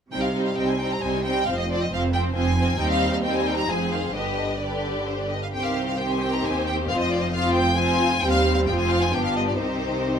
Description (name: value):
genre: quick classical-period movement for string orchestra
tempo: 134 BPM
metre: 3/4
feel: straight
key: C minor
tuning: A4 = 440 Hz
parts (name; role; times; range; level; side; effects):
- warm symphonic violin section; melody; 0.1-10.2 s; C5 to Bb5; -26 LUFS; left 1 dB; none
- warm symphonic violin section; second line; 0.1-10.2 s; C4 to C5; -27 LUFS; left 1 dB; none
- warm symphonic viola section; accompaniment; 0.1-10.2 s; D3 to D4; -27 LUFS; right 1 dB; none
- rich symphonic cello section; bass; 0.1-10.2 s; Eb2 to C3; -30 LUFS; right 2 dB; none
- rich symphonic double bass section; bass; 0.1-10.2 s; F1 to Eb2; -29 LUFS; right 2 dB; none
room: moderate large studio reverb, RT60 1.2 s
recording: minimal, uncompressed stereo recording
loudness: -21 LUFS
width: side -7 dB against mid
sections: 0.1-10.2 A section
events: none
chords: 0.1 Cm; 1.5 Fm; 2.8 Cm/Eb; 3.7 Fm; 4.2 G; 5.5 Cm; 6.9 Fm; 8.2 Cm/Eb; 8.7 F5; 9.1 G7; 9.6 Cm